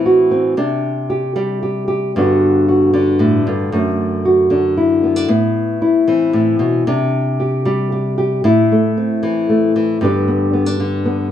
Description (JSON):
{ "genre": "folk, solo fingerstyle acoustic guitar", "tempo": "115 BPM", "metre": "3/4", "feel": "straight", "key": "unclear", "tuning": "A4 = 440 Hz", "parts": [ { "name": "nylon-string guitar", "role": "solo", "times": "0.0-11.3 s", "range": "F#2 to G4", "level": "-13 LUFS", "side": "left 1 dB", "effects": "none" } ], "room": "moderate large studio reverb, RT60 0.9 s", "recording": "band playing live in one room", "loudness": "-13 LUFS", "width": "side -10 dB against mid", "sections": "0.0-8.4 A section; 8.4-11.3 B section", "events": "none", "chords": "0.0 Amadd9; 0.6 Csus2; 2.1 Gmaj7; 3.7 D/F#; 5.3 Amadd9; 6.9 Csus2; 8.4 Am; 10.0 G", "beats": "0.04 | 0.57 1.09 1.62 | 2.15 2.68 3.20 | 3.72 4.25 4.77 | 5.29 5.81 6.33 | 6.85 7.38 7.91 | 8.44 8.96 9.49 | 10.01 10.54 11.06" }